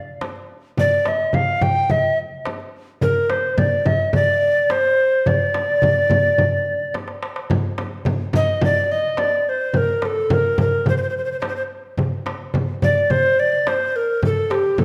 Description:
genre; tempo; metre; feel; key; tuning
Arabic maqam ensemble; 107 BPM; 4/4; straight; D maqam bayati; A4 = 440 Hz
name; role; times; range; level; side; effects
darbuka; percussion; 0.2-14.8 s; none; -27 LUFS; equal; none
frame drum; percussion; 0.2-14.8 s; none; -26 LUFS; equal; none
breathy mellow tenor recorder; melody; 0.8-14.8 s; G4 to G5; -20 LUFS; equal; none
room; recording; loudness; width
wet recital hall reverb, RT60 1.4 s; none; -19 LUFS; mono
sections
0.0-7.5 A section; 7.5-14.8 B section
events
drum fill 6.9-7.5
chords
none

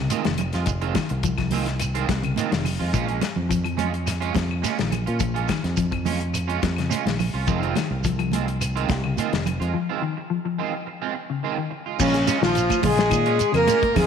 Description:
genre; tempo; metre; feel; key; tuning
afrobeat; 106 BPM; 4/4; straight; Bb minor; A4 = 440 Hz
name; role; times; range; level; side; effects
mellow electric guitar; arpeggios; 0.0-14.1 s; Db3 to F3; -30 LUFS; left 8 dB; wide subtle chorus
fingered electric bass; bass; 0.0-14.1 s; F1 to Bb2; -26 LUFS; equal; none
electric guitar at the edge of break-up; stabs; 0.1-14.1 s; Eb3 to F4; -29 LUFS; right 9 dB; ensemble chorus
warm soul drum kit; drums; 0.1-14.1 s; crash cymbal, hi-hat, kick drum, snare drum; -28 LUFS; left 4 dB; none
congas; percussion; 0.1-14.1 s; none; -30 LUFS; right 11 dB; none
shekere; percussion; 0.1-14.1 s; none; -32 LUFS; right 6 dB; none
claves; percussion; 0.4-14.1 s; none; -37 LUFS; left 11 dB; none
trombone with bucket mute; melody; 12.0-14.1 s; Db4 to Bb4; -22 LUFS; equal; none
brilliant trombone section; second line; 12.0-14.1 s; Db3 to Bb3; -26 LUFS; left 11 dB; none
brilliant trumpet; second line; 12.0-14.1 s; Db4 to Bb4; -27 LUFS; right 11 dB; none
room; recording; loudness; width
moderate echo chamber reverb, RT60 2.2 s; 1960s-style stereo with parts hard left and right; -21 LUFS; side -7 dB against mid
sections
0.0-12.0 A section; 12.0-14.1 B section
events
break 9.7-12.0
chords
0.0 Fm7; 2.9 Bbm7; 7.5 Fm7; 12.0 Bbm7

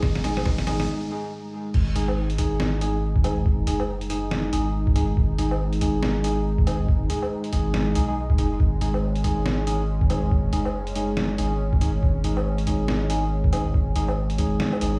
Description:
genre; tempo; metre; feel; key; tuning
deep dubstep; 140 BPM; 4/4; swing 60% on 16ths, half-time; unclear; A4 = 440 Hz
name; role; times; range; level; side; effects
dark analog pad; sustained chords; 0.0-15.0 s; G#3 to D#4; -34 LUFS; equal; chorus
soft dub sub bass; bass; 0.0-15.0 s; F#1 to B1; -28 LUFS; equal; none
electronic kick drum; drums; 0.0-14.5 s; none; -26 LUFS; equal; studio reverb
trip hop sampler-style drum kit; drums; 0.0-14.9 s; crash cymbal, hi-hat, snare drum, woodblock; -32 LUFS; equal; studio reverb
riser and swell; sound effects; 0.0-0.9, 14.6-15.0 s; none; -43 LUFS; equal; none
flickering grainy texture; texture; 0.1-0.9 s; G#3 to G#4; -46 LUFS; equal; none
tine electric piano; stabs; 0.2-15.0 s; G#3 to G#4; -31 LUFS; equal; overdrive, dub echo
room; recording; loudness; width
light reverb; played on a big sound system in a bare room, stone room reverb, small room ambience; -24 LUFS; mono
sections
0.0-1.7 A section; 1.7-15.0 B section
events
build-up 0.0-1.7; drum fill 0.0-0.9; riser 0.0-0.9; break 0.9-1.7; drop 1.7-15.0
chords
0.0 G#5

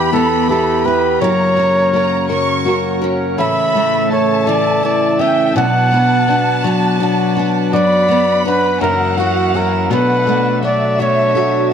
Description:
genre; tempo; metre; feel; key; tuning
six-eight pop ballad; 55 BPM (dotted quarters); 6/8; straight; B minor; A4 = 439 Hz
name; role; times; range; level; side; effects
clear flugelhorn; melody; 0.0-11.7 s; F#4 to F#5; -16 LUFS; equal; none
warm studio violin section; second line; 0.0-11.7 s; E5 to C#6; -22 LUFS; right 1 dB; none
picked steel-string acoustic guitar; accompaniment; 0.0-11.7 s; F#2 to G4; -17 LUFS; equal; double-tracked left and right
bright tonewheel organ; sustained chords; 0.0-11.7 s; E2 to F#5; -23 LUFS; right 2 dB; lush chorus
direct-recorded clean electric guitar; arpeggios; 0.0-11.7 s; F#2 to A#4; -22 LUFS; left 6 dB; tape echo
room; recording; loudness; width
light reverb, studio reverb; none; -12 LUFS; side -8 dB against mid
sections
0.0-11.7 A section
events
none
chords
0.0 Em; 1.2 F#; 3.4 A; 5.6 Bm; 7.7 Bm/F#; 8.8 F#7; 9.9 Bm7

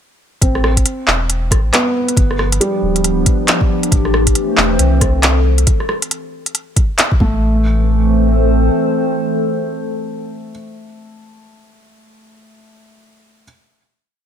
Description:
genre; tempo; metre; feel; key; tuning
future garage; 137 BPM; 4/4; swing 60% on 16ths; A minor; A4 = 441 Hz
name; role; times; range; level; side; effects
felt-muted upright piano; accompaniment; 0.4-4.1, 7.2-13.4 s; G3 to C4; -21 LUFS; right 1 dB; sidechain pumping, low-pass filter, dub echo
soft dub sub bass; bass; 0.4-8.7 s; D1 to C2; -15 LUFS; equal; sidechain pumping
electronic kick drum; drums; 0.4-7.3 s; none; -15 LUFS; equal; none
organic electronic drum kit; drums; 0.4-7.1 s; handclaps, hi-hat, rim click; -16 LUFS; equal; none
warbly tape-like pad; sustained chords; 2.5-11.0 s; E3 to C5; -18 LUFS; equal; chorus, built-in reverb, sidechain pumping
room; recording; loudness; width
light reverb, digital ambience; none; -12 LUFS; side -8 dB against mid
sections
0.4-7.4 groove; 7.4-10.9 final chord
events
filter sweep on felt piano 0.4-5.7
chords
0.4 Am; 2.2 G7; 3.9 Am; 5.7 N.C.; 7.2 A5; 7.4 Am

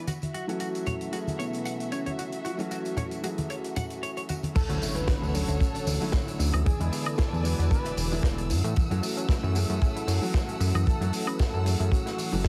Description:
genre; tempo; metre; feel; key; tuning
nu-disco, nu disco; 114 BPM; 4/4; swing 55% on 16ths; F# minor; A4 = 440 Hz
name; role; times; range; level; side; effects
unison lead; melody; 0.0-12.5 s; B3 to C#5; -39 LUFS; equal; tape echo
warm concert grand piano; accompaniment; 0.0-12.5 s; D3 to G#4; -36 LUFS; equal; sidechain pumping
rich studio violin section; sustained chords; 0.0-12.5 s; A3 to E6; -41 LUFS; equal; sidechain pumping
clean electric guitar; riff; 0.1-4.3 s; F#4 to F#5; -40 LUFS; equal; lush chorus
natural country drum kit; drums; 0.1-12.5 s; crash cymbal, hi-hat, snare drum, tambourine, woodblock; -38 LUFS; equal; none
congas and tambourine; percussion; 0.1-4.5 s; none; -37 LUFS; equal; none
impact; sound effects; 4.5-6.7 s; none; -40 LUFS; equal; none
analog pluck; arpeggios; 4.6-12.5 s; E3 to E4; -40 LUFS; equal; chorus, phaser, sidechain pumping, tape echo
fat analog bass; bass; 4.6-12.5 s; E1 to A2; -29 LUFS; equal; sidechain pumping
kick drum; drums; 4.6-12.5 s; none; -28 LUFS; equal; none
room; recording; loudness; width
light reverb, studio reverb; heavily compressed radio sound; -28 LUFS; mono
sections
0.0-4.6 A section; 4.6-12.5 B section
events
drop 4.6-12.5; impact 4.6-6.7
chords
0.1 F#m7; 4.6 Dmaj9; 6.7 E7; 8.5 F#m7

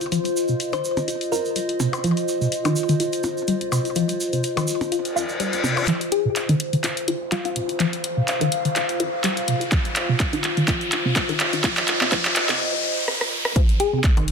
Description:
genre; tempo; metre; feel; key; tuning
minimal techno; 125 BPM; 4/4; swing 55% on 16ths; unclear; A4 = 439 Hz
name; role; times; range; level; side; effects
punchy sub bass; bass; 0.0-14.3 s; Eb1 to F2; -38 LUFS; equal; none
house drum kit; drums; 0.0-14.3 s; handclaps, hi-hat, rim click; -25 LUFS; equal; low-pass filter on hats, studio reverb, low-pass filter on snare
tube shaker; percussion; 0.0-5.9 s; none; -32 LUFS; right 4 dB; none
warbly tape-like pad; texture; 0.0-12.6 s; F4 to F5; -26 LUFS; left 1 dB; chorus, built-in reverb, phaser, sidechain pumping
resonant blip pluck; riff; 0.1-14.2 s; C3 to F4; -24 LUFS; equal; phaser, sidechain pumping, tape echo
thumb-piano-like synth pluck; melody; 0.7-2.0, 6.1-7.5, 13.8-14.0 s; F4 to C5; -25 LUFS; left 4 dB; chorus, phaser, digital delay
percussion blips; percussion; 0.7-5.9, 14.2-14.3 s; none; -30 LUFS; left 3 dB; studio reverb, digital delay
reverse cymbal and riser; sound effects; 5.1-13.6 s; none; -27 LUFS; left 1 dB; none
electronic kick drum; drums; 9.7-14.1 s; none; -20 LUFS; equal; studio reverb
room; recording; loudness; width
moderate plate reverb, RT60 1.1 s; dense, heavily limited modern master, high-pass filter; -20 LUFS; side -6 dB against mid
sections
0.0-5.9 A section; 5.9-13.6 B section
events
filter sweep on synth arpeggio sound 0.0-5.9, 5.9-13.6; reverse cymbal 5.1-5.9; build-up 5.9-13.6; drum fill 5.9-12.6, 13.1-13.6; riser 5.9-13.6; filter sweep 5.9-13.6; break 12.6-13.6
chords
0.0 F5

